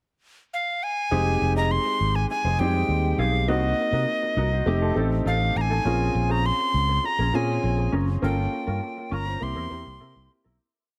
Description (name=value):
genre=pop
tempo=101 BPM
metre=4/4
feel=straight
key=F minor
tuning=A4 = 440 Hz
part: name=breathy alto recorder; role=melody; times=0.5-10.3 s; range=Eb5 to C6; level=-29 LUFS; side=equal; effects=none
part: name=warm concert grand piano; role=accompaniment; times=1.1-10.6 s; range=G3 to A4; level=-31 LUFS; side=equal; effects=subtle chorus
part: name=mellow electric guitar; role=riff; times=1.1-10.6 s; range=C4 to Eb5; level=-35 LUFS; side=equal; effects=analog chorus
part: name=fretless electric bass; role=bass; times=1.1-10.6 s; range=F1 to C3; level=-27 LUFS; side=equal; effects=none
room=light reverb, small room ambience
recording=none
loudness=-24 LUFS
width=mono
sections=0.0-1.1 pickup bar; 1.1-10.6 verse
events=fade-out 8.2-10.6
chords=0.0 N.C.; 1.1 Fm7; 3.5 Cm7b5; 4.7 F7; 5.9 Bbm7; 8.2 Gm7b5; 9.4 C7